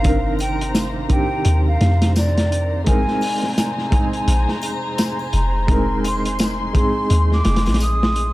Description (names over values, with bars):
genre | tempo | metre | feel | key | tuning
trip hop | 85 BPM | 4/4 | swing 60% on 16ths | unclear | A4 = 439 Hz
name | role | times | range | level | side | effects
mellow hollow silver concert flute | melody | 0.0-8.3 s | D5 to Eb6 | -25 LUFS | equal | tape echo
felt-muted upright piano | accompaniment | 0.0-8.3 s | D3 to Bb4 | -24 LUFS | right 1 dB | tremolo, tape echo
muted studio string section | sustained chords | 0.0-8.3 s | C3 to C6 | -28 LUFS | left 1 dB | none
soft 808-style bass | bass | 0.0-8.3 s | F1 to F2 | -19 LUFS | equal | none
crunchy breakbeat drum kit | drums | 0.0-8.3 s | hi-hat, kick drum, snare drum | -21 LUFS | equal | none
triangle and tambourine | percussion | 0.4-8.0 s | none | -37 LUFS | left 3 dB | none
room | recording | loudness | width
studio reverb | dark, warm production | -16 LUFS | side -17 dB against mid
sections
0.0-8.3 A section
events
none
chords
0.0 Cm9; 2.9 Bb9sus4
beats
| 0.04 0.75 1.46 2.16 | 2.87 3.57 4.28 4.98 | 5.69 6.40 7.10 7.81